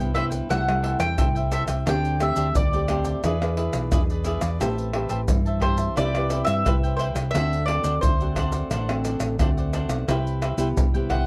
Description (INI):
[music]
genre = samba and choro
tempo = 88 BPM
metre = 4/4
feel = straight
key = unclear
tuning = A4 = 442 Hz
[part]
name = cavaquinho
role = accompaniment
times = 0.0-11.3 s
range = D4 to A5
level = -34 LUFS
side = equal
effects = none
[part]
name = nylon-string guitar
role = accompaniment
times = 0.0-11.3 s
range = G2 to B4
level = -32 LUFS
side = equal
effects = none
[part]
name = hollow-body short-scale fingered electric bass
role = bass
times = 0.0-11.3 s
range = A1 to G2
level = -28 LUFS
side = equal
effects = none
[part]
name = maracas, pandeiro, tamborim and surdo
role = percussion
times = 0.0-11.3 s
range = none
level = -28 LUFS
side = equal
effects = none
[part]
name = mandolin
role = melody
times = 0.1-11.3 s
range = C5 to G5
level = -29 LUFS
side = equal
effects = none
[sound]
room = little or no reverb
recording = dry, close 1970s-style studio recording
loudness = -23 LUFS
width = mono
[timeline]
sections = 0.0-11.3 A section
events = none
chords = 0.0 Cmaj7; 0.5 Am7/C; 1.9 D7sus4; 3.2 E7; 4.6 Am9; 6.0 Cmaj7; 7.3 D7; 10.1 Cmaj7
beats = 0.50 1.19 | 1.87 2.56 3.24 3.92 | 4.61 5.29 5.98 6.66 | 7.34 8.03 8.71 9.39 | 10.08 10.76